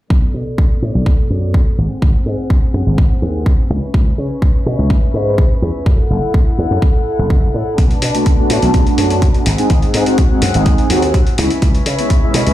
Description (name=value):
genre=filtered disco house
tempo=125 BPM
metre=4/4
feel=straight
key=B dorian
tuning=A4 = 439 Hz
part: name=rich chamber string section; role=sustained chords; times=0.1-12.5 s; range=B3 to A5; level=-22 LUFS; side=left 2 dB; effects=sidechain pumping, low-pass filter
part: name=slap bass with an envelope filter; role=bass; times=0.1-12.5 s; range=F#1 to C#3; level=-16 LUFS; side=equal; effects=sidechain pumping, low-pass filter
part: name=electronic kick drum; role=drums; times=0.1-12.2 s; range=none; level=-12 LUFS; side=equal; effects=none
part: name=electronic hi-hat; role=drums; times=7.8-12.5 s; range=none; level=-23 LUFS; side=left 2 dB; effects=overdrive, sidechain pumping on hats
part: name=mellow synth brass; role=accompaniment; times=8.1-12.5 s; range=G#3 to G#4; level=-17 LUFS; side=right 1 dB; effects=chorus, phaser, sidechain pumping, low-pass filter
room=light reverb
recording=played on a big sound system in a bare room, large studio reverb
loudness=-12 LUFS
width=side -14 dB against mid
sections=0.1-12.5 A section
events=filter sweep 0.1-12.5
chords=0.1 Bm7; 1.8 G#7; 3.7 C#m7; 5.9 F#m7; 7.8 Bm7; 9.5 G#7; 11.4 C#m7